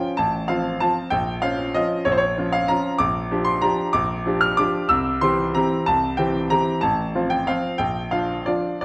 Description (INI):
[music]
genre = classical, piano waltz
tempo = 171-201 BPM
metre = 3/4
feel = rubato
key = unclear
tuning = A4 = 440 Hz
[part]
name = bright grand piano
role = solo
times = 0.0-8.8 s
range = A1 to F6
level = -22 LUFS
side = equal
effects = none
[sound]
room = moderate recital hall reverb, RT60 1.5 s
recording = dark, warm production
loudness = -22 LUFS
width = mono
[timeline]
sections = 0.0-8.8 A section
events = none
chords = 0.2 F/A; 1.1 Bbm; 3.0 Gm7/Bb; 4.9 C; 6.8 F/A; 7.8 Bb